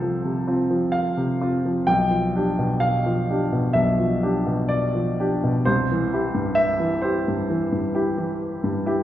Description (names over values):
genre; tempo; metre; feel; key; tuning
classical, romantic character piece for solo piano; 65 BPM; 4/4; rubato; C major; A4 = 441 Hz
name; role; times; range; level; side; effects
clear grand piano; solo; 0.0-9.0 s; B1 to G5; -20 LUFS; equal; none
room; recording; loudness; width
wet recital hall reverb, RT60 1.4 s; heard from further back in the room, nothing above 7.8 kHz; -20 LUFS; side -12 dB against mid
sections
0.0-9.0 A section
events
none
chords
0.0 F/C; 1.9 G7/B; 5.7 C